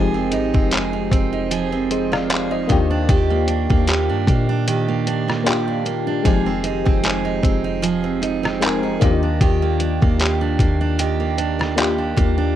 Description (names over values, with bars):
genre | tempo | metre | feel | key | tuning
contemporary R&B | 76 BPM | 4/4 | swing 54% on 16ths | Eb major | A4 = 441 Hz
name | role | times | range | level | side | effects
FM electric piano with tremolo | accompaniment | 0.0-12.6 s | Ab3 to F5 | -24 LUFS | left 8 dB | cassette tape
picked steel-string acoustic guitar | arpeggios | 0.0-12.6 s | Eb3 to Ab4 | -21 LUFS | right 7 dB | cassette tape, tape echo
warm 808-style bass | bass | 0.0-12.6 s | F1 to Bb2 | -23 LUFS | left 1 dB | none
detuned 8-bit digital drum machine | drums | 0.3-12.4 s | handclaps, hi-hat, kick drum, rim click | -19 LUFS | left 1 dB | cassette tape
room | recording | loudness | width
digital ambience | home recording on cassette | -16 LUFS | side -11 dB against mid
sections
0.0-12.6 A section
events
none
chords
0.0 Fm7; 2.7 Ebmaj7; 6.2 Fm7; 9.0 Ebmaj7